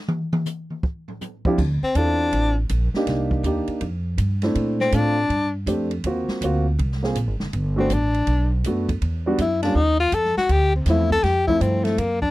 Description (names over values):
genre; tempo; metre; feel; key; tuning
jazz, small-group swing and bop; 161 BPM; 4/4; swing 65% on 8ths; D minor; A4 = 440 Hz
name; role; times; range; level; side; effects
open jazz drum kit; drums; 0.1-12.3 s; crash cymbal, hi-hat, kick drum, ride cymbal, snare drum, toms; -28 LUFS; equal; none
warm grand piano; accompaniment; 1.5-12.0 s; F3 to A4; -24 LUFS; right 1 dB; none
upright bass; bass; 1.6-12.3 s; F#1 to Bb2; -22 LUFS; equal; none
breathy tenor saxophone; melody; 1.8-2.6, 4.8-5.6, 7.8-12.3 s; A3 to A4; -21 LUFS; left 2 dB; none
room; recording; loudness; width
little or no reverb; dry, close 1970s-style studio recording; -19 LUFS; side -17 dB against mid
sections
0.0-1.6 A section; 1.6-12.3 B section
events
drum solo 0.0-1.6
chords
0.0 N.C.; 0.8 Dm11/F; 1.6 Dm9; 3.1 Cm7; 3.8 F69; 4.6 Bbmaj7; 6.0 G#13; 7.5 Gmaj9; 9.0 Em9; 9.8 Ebsus2; 10.5 Dm9